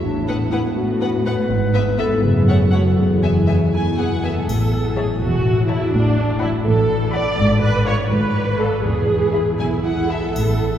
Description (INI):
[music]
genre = cinematic, playful, whimsical film cue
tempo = 82 BPM (dotted quarters)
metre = 6/8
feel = straight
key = unclear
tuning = A4 = 441 Hz
[part]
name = dark clarinet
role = second line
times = 0.0-3.7 s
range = D4 to B4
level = -25 LUFS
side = left 1 dB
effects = none
[part]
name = concert harp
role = arpeggios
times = 0.0-10.8 s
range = E2 to E5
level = -23 LUFS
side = left 3 dB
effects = none
[part]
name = warm studio cello section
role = bass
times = 0.0-10.8 s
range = E2 to B2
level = -22 LUFS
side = right 1 dB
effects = none
[part]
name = warm studio double bass section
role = bass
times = 0.0-10.8 s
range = E1 to B1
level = -23 LUFS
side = right 1 dB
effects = none
[part]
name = warm studio violin section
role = melody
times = 0.3-10.3 s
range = E5 to B5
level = -34 LUFS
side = left 4 dB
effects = none
[part]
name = warm studio violin section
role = second line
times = 0.3-10.4 s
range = B4 to G#5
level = -32 LUFS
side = left 2 dB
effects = none
[part]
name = warm studio viola section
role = accompaniment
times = 0.3-10.8 s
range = A3 to D5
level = -22 LUFS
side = right 1 dB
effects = none
[part]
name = triangle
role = percussion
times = 4.5-5.4, 10.4-10.8 s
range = none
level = -39 LUFS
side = left 3 dB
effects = none
[sound]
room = wet cathedral reverb, RT60 5.8 s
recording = heard from further back in the room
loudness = -16 LUFS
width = side -10 dB against mid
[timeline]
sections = 0.0-4.5 A section; 4.5-10.8 A section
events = none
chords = 0.0 Bm7/A; 1.5 E/G#; 2.2 F#m; 3.0 E; 4.5 A; 5.9 Bm7/A; 7.4 G#dim7; 8.8 E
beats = | 0.03 0.76 | 1.50 2.23 | 2.98 3.73 | 4.48 5.21 | 5.93 6.66 | 7.38 8.11 | 8.85 9.60 | 10.35